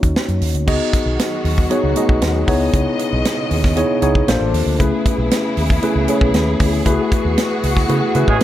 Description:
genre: polished 1980s jazz-funk pop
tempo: 116 BPM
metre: 4/4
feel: straight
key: unclear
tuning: A4 = 440 Hz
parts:
  - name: mellow tine electric piano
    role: accompaniment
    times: 0.0-8.4 s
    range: A3 to D#5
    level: -18 LUFS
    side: left 1 dB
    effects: wide subtle chorus
  - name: vintage muted fingered electric bass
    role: bass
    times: 0.0-8.4 s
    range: A1 to C#3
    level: -20 LUFS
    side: equal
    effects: none
  - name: tight funk drum kit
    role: drums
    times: 0.0-8.4 s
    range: crash cymbal, hi-hat, kick drum, snare drum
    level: -19 LUFS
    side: equal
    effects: none
  - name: warm studio string section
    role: sustained chords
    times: 0.7-8.4 s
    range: B2 to D#5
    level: -24 LUFS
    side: left 1 dB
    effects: none
  - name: mellow horn section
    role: second line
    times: 8.3-8.4 s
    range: E3 to G#4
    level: -17 LUFS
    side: right 4 dB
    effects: none
room: studio reverb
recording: none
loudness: -14 LUFS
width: side -12 dB against mid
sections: 0.7-8.4 A section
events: band accent 6.9-8.4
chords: 0.0 D#m7; 0.7 G#m7; 2.5 C#m9; 4.3 A#maj9; 4.8 Amaj9; 6.9 F#m11/C#

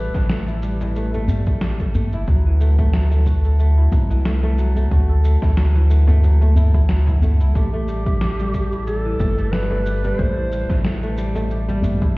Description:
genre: organic downtempo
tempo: 91 BPM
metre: 4/4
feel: swing 55% on 16ths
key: A dorian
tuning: A4 = 441 Hz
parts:
  - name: mellow clarinet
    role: melody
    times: 0.0-0.3, 7.6-10.8 s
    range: G4 to C5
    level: -28 LUFS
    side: equal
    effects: ping-pong delay
  - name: kora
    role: arpeggios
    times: 0.0-12.2 s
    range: E3 to A4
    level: -27 LUFS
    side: equal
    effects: low-pass filter, digital delay
  - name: warm sub bass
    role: bass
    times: 0.0-12.2 s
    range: G1 to D2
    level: -17 LUFS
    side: equal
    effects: sidechain pumping
  - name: electronic kick drum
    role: drums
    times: 0.1-12.1 s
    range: none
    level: -22 LUFS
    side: equal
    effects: overdrive
  - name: electronic snare drum and shaker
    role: drums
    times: 0.1-12.1 s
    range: none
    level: -28 LUFS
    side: equal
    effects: none
  - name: djembe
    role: percussion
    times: 0.1-12.0 s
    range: none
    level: -25 LUFS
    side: left 1 dB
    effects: none
room: small room ambience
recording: heard muffled through a wall, stone room reverb, EQ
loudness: -16 LUFS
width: side -23 dB against mid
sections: 0.0-12.2 A section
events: none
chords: 0.0 A5; 2.3 D9; 7.6 A7(no3)

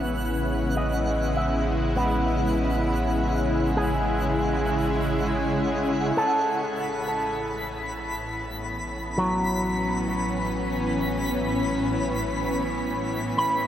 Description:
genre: ambient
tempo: 50 BPM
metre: 3/4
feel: straight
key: A major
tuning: A4 = 440 Hz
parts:
  - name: shimmering ambient pad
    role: sustained chords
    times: 0.0-13.7 s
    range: A2 to E4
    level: -26 LUFS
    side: equal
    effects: chorus, built-in reverb
  - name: electric guitar with an envelope filter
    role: arpeggios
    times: 0.0-13.7 s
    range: F#3 to B5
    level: -29 LUFS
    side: equal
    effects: tape echo
  - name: warm sub bass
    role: bass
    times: 0.0-13.7 s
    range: A1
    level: -31 LUFS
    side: equal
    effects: none
  - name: twinkling granular texture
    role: texture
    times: 0.0-13.7 s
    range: F#5 to B5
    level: -33 LUFS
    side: equal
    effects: built-in reverb
room: wet shimmer reverb, RT60 7.6 s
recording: none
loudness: -23 LUFS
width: side -10 dB against mid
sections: 0.0-6.2 A section; 6.2-13.7 B section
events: fade-in on ambient pad 6.2-13.7; fade-in on sub bass 6.2-13.7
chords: 0.0 C#m7/A; 6.2 Amaj7

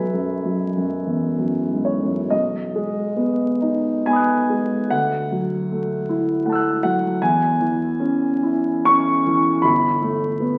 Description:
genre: classical, impressionist solo piano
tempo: 62-81 BPM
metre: 3/4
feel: rubato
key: B mixolydian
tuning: A4 = 440 Hz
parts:
  - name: warm concert grand piano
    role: solo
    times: 0.0-10.6 s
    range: G1 to F#6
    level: -20 LUFS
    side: equal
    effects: none
room: wet concert hall reverb, RT60 1.8 s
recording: very old 78 rpm record, vinyl crackle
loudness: -20 LUFS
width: mono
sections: 0.0-2.3 A section; 2.3-10.6 B section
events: none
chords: 0.0 B5; 2.3 B6; 4.9 Dadd9; 7.2 E6; 9.7 Gadd9

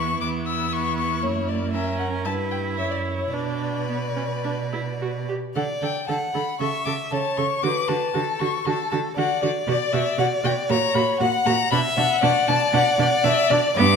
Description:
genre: quick classical-period movement for string quartet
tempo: 117 BPM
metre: 4/4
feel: rubato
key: B minor, D major from 5.6 s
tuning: A4 = 439 Hz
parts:
  - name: warm violin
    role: melody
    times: 0.0-14.0 s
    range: B4 to E6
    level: -24 LUFS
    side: left 7 dB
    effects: none
  - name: rich violin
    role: second line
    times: 0.0-14.0 s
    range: E4 to F#5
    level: -26 LUFS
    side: left 1 dB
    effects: none
  - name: rich viola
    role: accompaniment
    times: 0.0-14.0 s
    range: A#3 to A4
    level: -28 LUFS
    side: right 4 dB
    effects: none
  - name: rich cello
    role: bass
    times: 0.0-14.0 s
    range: E2 to D3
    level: -27 LUFS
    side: right 6 dB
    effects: none
room: moderate recital hall reverb, RT60 1.5 s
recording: none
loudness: -20 LUFS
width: side -6 dB against mid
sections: 0.0-5.6 A section; 5.6-14.0 B section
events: none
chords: 0.2 C#m7/E; 1.2 F#; 2.3 G; 2.8 F#5; 3.3 Bm; 5.6 D; 6.6 A/C#; 7.6 D; 9.7 Bm; 10.7 F#/A#; 11.7 Bm

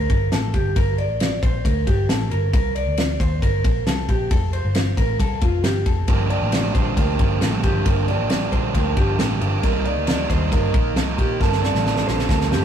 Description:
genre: jangly indie pop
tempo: 135 BPM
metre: 4/4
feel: straight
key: G minor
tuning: A4 = 439 Hz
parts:
  - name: electric guitar through a small old amp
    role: arpeggios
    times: 0.0-12.6 s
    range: F4 to D5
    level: -26 LUFS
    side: equal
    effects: tube saturation, spring reverb
  - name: vintage muted picked electric bass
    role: bass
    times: 0.0-12.6 s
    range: F1 to Eb2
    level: -23 LUFS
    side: equal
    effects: none
  - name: loose indie drum kit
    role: drums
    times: 0.1-12.6 s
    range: kick drum, ride cymbal, snare drum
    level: -21 LUFS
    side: left 1 dB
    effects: none
  - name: crunchy overdriven guitar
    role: accompaniment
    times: 6.1-12.6 s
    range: G2 to Bb4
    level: -24 LUFS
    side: right 5 dB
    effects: none
room: moderate stone room reverb, RT60 1.0 s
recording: rough rehearsal-room recording, warm saturation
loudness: -18 LUFS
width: side -9 dB against mid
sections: 0.0-12.6 A section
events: drum fill 11.4-12.6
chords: 0.0 Gm; 2.5 C7(no3); 4.3 F; 6.1 Gm7; 9.6 Cm7; 11.4 Gmadd9

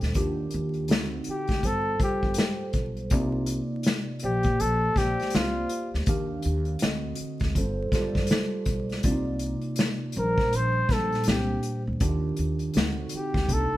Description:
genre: R&B, neo-soul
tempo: 81 BPM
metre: 4/4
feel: swing 61% on 16ths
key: unclear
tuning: A4 = 440 Hz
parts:
  - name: tine electric piano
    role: accompaniment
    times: 0.0-13.8 s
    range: Bb2 to F5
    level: -30 LUFS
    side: right 2 dB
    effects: phaser
  - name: upright bass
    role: bass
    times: 0.0-13.8 s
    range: G1 to Bb2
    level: -30 LUFS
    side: equal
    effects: none
  - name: unplugged drum kit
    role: drums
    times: 0.0-13.7 s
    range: hi-hat, kick drum, snare drum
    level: -26 LUFS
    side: equal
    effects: none
  - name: mellow flugelhorn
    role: melody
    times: 1.3-13.8 s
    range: F4 to C5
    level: -27 LUFS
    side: left 1 dB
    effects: none
room: light reverb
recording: band playing live in one room, vinyl crackle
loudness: -24 LUFS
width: side -15 dB against mid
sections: 0.0-13.8 A section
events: none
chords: 0.2 Ebmaj9; 0.9 D7b9; 1.6 G9sus4; 3.1 Cm11; 4.2 Bb69; 6.1 Ebmaj9; 6.8 D7b9; 7.6 G9sus4; 9.0 Cm11; 10.2 Bb69; 12.0 Ebmaj9; 12.7 D7b9

